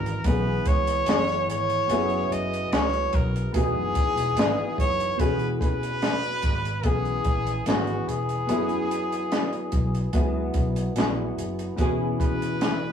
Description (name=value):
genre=indie pop, bedroom pop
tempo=73 BPM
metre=4/4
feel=straight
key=E major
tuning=A4 = 439 Hz
part: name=clear trumpet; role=melody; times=0.0-12.9 s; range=F#4 to D#5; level=-28 LUFS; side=equal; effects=none
part: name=flamenco guitar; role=accompaniment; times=0.0-12.9 s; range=E3 to G#4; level=-29 LUFS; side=left 2 dB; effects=vibrato effect
part: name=warm analog keys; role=accompaniment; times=0.0-12.9 s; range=B3 to G#4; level=-35 LUFS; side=right 3 dB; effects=chorus, phaser
part: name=vintage muted fingered electric bass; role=bass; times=0.0-12.9 s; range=E1 to C#2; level=-30 LUFS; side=equal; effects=none
part: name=compact cocktail drum kit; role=drums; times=0.1-12.8 s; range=hi-hat, kick drum, snare drum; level=-26 LUFS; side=equal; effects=none
room=light reverb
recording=rough rehearsal-room recording, small room reverb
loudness=-22 LUFS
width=side -8 dB against mid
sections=0.0-5.2 A section; 5.2-12.9 B section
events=none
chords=0.0 E6; 3.5 Emaj7; 5.2 E6; 8.5 F#9sus4; 11.8 E6